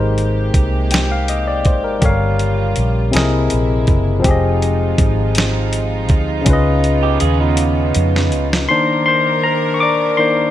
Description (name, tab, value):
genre	slow six-eight R&B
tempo	54 BPM (dotted quarters)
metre	6/8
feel	straight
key	C minor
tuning	A4 = 441 Hz
part	barky tine electric piano	accompaniment	0.0-10.5 s	C3 to D6	-17 LUFS	left 3 dB	none
part	warm studio string section	sustained chords	0.0-10.5 s	C3 to Bb4	-24 LUFS	right 4 dB	none
part	vintage muted fingered electric bass	bass	0.0-8.7 s	F1 to F2	-17 LUFS	right 1 dB	none
part	dusty soul sampler-style drum kit	drums	0.2-8.7 s	hi-hat, kick drum, snare drum	-17 LUFS	right 1 dB	none
part	electric guitar through a small old amp	second line	7.0-8.5 s	Cb4 to Ab4	-24 LUFS	right 9 dB	ping-pong delay
room	light reverb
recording	none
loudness	-13 LUFS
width	side -12 dB against mid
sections	0.0-8.7 A section; 8.7-10.5 B section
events	drum fill 7.6-8.7; tine electric piano solo 8.7-10.5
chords	0.0 Abmaj9; 2.0 Gm7b5; 3.1 C7alt; 4.2 Fm9; 6.5 Db9; 8.7 Cm9